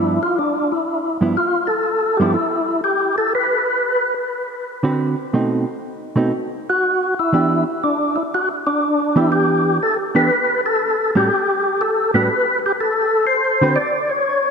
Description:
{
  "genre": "jazz",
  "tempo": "121 BPM",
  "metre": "4/4",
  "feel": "swing 68% on 8ths",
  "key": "D mixolydian",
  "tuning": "A4 = 440 Hz",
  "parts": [
    { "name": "percussive tonewheel organ", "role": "melody", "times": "0.0-14.5 s", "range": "D4 to D5", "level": "-17 LUFS", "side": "left 1 dB", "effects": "slow rotary speaker, overdrive, chorus vibrato, diffuse ambient delay" },
    { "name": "hollow-body jazz guitar", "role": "accompaniment", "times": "0.0-13.8 s", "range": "G2 to B4", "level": "-20 LUFS", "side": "right 2 dB", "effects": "none" }
  ],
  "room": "wet plate reverb, RT60 3.1 s",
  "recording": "dreamy mix soaked in reverb",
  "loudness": "-16 LUFS",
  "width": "side -6 dB against mid",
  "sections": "0.0-14.5 A section",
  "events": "none",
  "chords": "0.0 G13; 3.4 D6; 5.3 B7b9; 7.3 Em7; 11.3 A13; 13.3 D6"
}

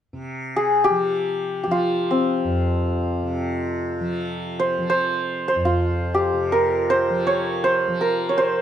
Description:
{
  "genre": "indian classical",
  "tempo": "free time",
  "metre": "none",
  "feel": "none",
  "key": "unclear",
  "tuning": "A4 = 441 Hz",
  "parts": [
    { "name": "tanpura", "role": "drone", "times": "0.1-8.6 s", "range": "F2 to F3", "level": "-27 LUFS", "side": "equal", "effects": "none" },
    { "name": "santur", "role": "melody", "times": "0.6-8.6 s", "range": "C4 to Db5", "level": "-20 LUFS", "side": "equal", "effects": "plate reverb" }
  ],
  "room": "moderate small room reverb, RT60 0.6 s",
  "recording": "dark, warm production",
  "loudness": "-19 LUFS",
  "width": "side -10 dB against mid",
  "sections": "0.1-8.6 A section",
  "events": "none",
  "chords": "none"
}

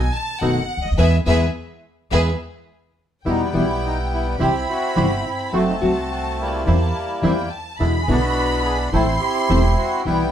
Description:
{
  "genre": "tango",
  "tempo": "106 BPM",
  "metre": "4/4",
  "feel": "rubato",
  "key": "E major, E minor from 3.3 s",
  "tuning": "A4 = 440 Hz",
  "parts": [
    { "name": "warm studio violin section", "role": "second line", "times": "0.0-10.3 s", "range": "G#4 to C6", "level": "-26 LUFS", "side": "left 1 dB", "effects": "none" },
    { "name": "bandoneon", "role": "stabs", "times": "0.0-10.3 s", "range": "G3 to A4", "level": "-30 LUFS", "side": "right 3 dB", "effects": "none" },
    { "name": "upright bass", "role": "bass", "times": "0.0-10.3 s", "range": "E1 to E2", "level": "-22 LUFS", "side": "right 1 dB", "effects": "none" },
    { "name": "nylon-string guitar", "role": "accompaniment", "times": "0.4-10.2 s", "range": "B2 to F#4", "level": "-21 LUFS", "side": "left 1 dB", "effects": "none" },
    { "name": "bandoneon", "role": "melody", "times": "3.3-10.3 s", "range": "G3 to A4", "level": "-22 LUFS", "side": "equal", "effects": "none" }
  ],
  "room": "light reverb",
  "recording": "band playing live in one room",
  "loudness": "-18 LUFS",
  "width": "side -10 dB against mid",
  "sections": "0.0-3.3 A section; 3.3-10.3 B section",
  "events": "violin section solo 0.0-3.3; band accent 1.0-3.3",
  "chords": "0.0 B7; 1.0 E; 3.3 Em; 4.4 C; 5.5 F#dim; 6.7 C7/E; 7.8 E7; 8.9 Am"
}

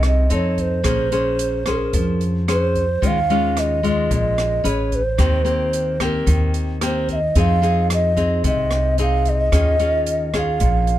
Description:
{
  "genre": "bossa nova",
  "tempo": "111 BPM",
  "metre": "4/4",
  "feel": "straight",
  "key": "unclear",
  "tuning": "A4 = 440 Hz",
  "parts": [
    { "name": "breathy mellow bansuri", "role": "melody", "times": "0.0-11.0 s", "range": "Bb4 to F5", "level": "-21 LUFS", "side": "right 2 dB", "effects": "plate reverb" },
    { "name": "nylon-string guitar", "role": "accompaniment", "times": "0.0-11.0 s", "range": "Bb2 to C5", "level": "-23 LUFS", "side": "left 3 dB", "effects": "none" },
    { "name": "upright bass", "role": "bass", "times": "0.0-11.0 s", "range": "A1 to F2", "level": "-20 LUFS", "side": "equal", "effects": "none" },
    { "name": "open jazz drum kit", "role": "drums", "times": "0.0-11.0 s", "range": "hi-hat, kick drum, rim click", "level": "-26 LUFS", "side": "equal", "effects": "none" }
  ],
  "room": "light reverb",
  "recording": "dark, warm production",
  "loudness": "-16 LUFS",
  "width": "side -13 dB against mid",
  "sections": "0.0-11.0 A section",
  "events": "none",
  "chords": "0.3 F7; 0.8 Bbm9; 3.0 Eb9sus4; 4.6 Amaj9; 5.2 Eb6; 7.4 Fm7; 9.5 Eb9sus4"
}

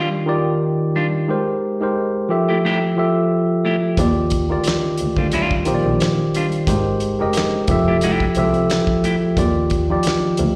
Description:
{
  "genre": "R&B, neo-soul",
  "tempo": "89 BPM",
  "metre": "4/4",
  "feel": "swing 54% on 16ths",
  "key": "Eb major",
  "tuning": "A4 = 440 Hz",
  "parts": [
    { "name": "semi-hollow electric guitar", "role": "second line", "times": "0.0-9.2 s", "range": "G3 to G4", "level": "-24 LUFS", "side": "equal", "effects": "slapback echo" },
    { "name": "tine electric piano", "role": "accompaniment", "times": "0.0-10.6 s", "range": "Eb3 to F5", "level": "-20 LUFS", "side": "equal", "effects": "slapback echo" },
    { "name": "rich double bass", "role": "bass", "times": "4.0-10.6 s", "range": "F1 to Eb2", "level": "-24 LUFS", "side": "equal", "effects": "none" },
    { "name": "damped 70s drum kit", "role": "drums", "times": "4.0-10.5 s", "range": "handclaps, hi-hat, kick drum, snare drum", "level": "-25 LUFS", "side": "equal", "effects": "none" }
  ],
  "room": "light reverb",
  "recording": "live gig heard through the venue's PA, recital hall reverb",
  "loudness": "-19 LUFS",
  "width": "mono",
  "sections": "0.0-10.6 A section",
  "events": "none",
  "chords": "0.0 Ebmaj9; 1.3 Abmaj9; 2.3 Fmaj9; 4.0 Ebmaj9; 6.7 Abmaj9; 7.7 Fmaj9; 9.4 Ebmaj9"
}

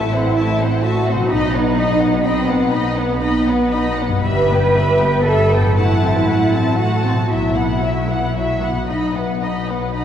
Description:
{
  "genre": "classical",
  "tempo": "37-43 BPM (dotted quarters)",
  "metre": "6/8",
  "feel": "rubato",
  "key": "unclear",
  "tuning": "A4 = 436 Hz",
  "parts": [
    { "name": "muted symphonic violin section", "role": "melody", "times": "0.0-10.0 s", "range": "E5 to B5", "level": "-27 LUFS", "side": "left 4 dB", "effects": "none" },
    { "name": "muted symphonic violin section", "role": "second line", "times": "0.0-10.0 s", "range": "B4 to A5", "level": "-24 LUFS", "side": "left 2 dB", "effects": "none" },
    { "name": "muted symphonic viola section", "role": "accompaniment", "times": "0.0-10.0 s", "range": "F#3 to D#4", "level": "-24 LUFS", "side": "equal", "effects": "none" },
    { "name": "concert harp", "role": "arpeggios", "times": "0.0-10.0 s", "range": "G2 to F#4", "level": "-24 LUFS", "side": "left 6 dB", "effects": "none" },
    { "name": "muted symphonic cello section", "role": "bass", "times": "0.0-8.9 s", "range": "B3 to B4", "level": "-19 LUFS", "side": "right 2 dB", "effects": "none" },
    { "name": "muted symphonic double bass section", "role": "bass", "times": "0.0-10.0 s", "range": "G1 to B1", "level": "-21 LUFS", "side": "right 2 dB", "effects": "none" }
  ],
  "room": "wet cathedral reverb, RT60 4.0 s",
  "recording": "recorded in a church or concert hall",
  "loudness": "-15 LUFS",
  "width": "side -9 dB against mid",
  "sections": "0.0-10.0 A section",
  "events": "none",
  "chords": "0.0 F#m7b5/A; 1.3 B; 4.3 Em/G; 5.8 F#dim/A; 7.3 Bsus4; 8.9 B"
}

